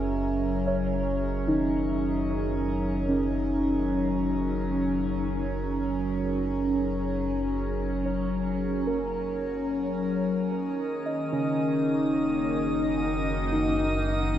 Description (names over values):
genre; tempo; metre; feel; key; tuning
ambient; free time; none; none; F# major; A4 = 440 Hz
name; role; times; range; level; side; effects
evolving wavetable pad; sustained chords; 0.0-14.4 s; D#3 to A#4; -28 LUFS; equal; chorus, built-in reverb, phaser, shimmer reverb
muted felt-like synth keys; arpeggios; 0.0-14.4 s; C#4 to G#5; -29 LUFS; equal; chorus, tape echo, shimmer reverb
deep rumbling drone; bass; 0.0-14.4 s; F#1; -33 LUFS; equal; built-in reverb
drifting glass-harmonics texture; texture; 10.8-14.4 s; D#5 to D#6; -34 LUFS; left 1 dB; chorus, built-in reverb, shimmer reverb
room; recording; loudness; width
wet plate reverb, RT60 2.8 s; dreamy mix soaked in reverb, cassette tape; -25 LUFS; side -11 dB against mid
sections
0.0-14.4 A section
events
none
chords
0.0 F#7; 10.3 D#m/F#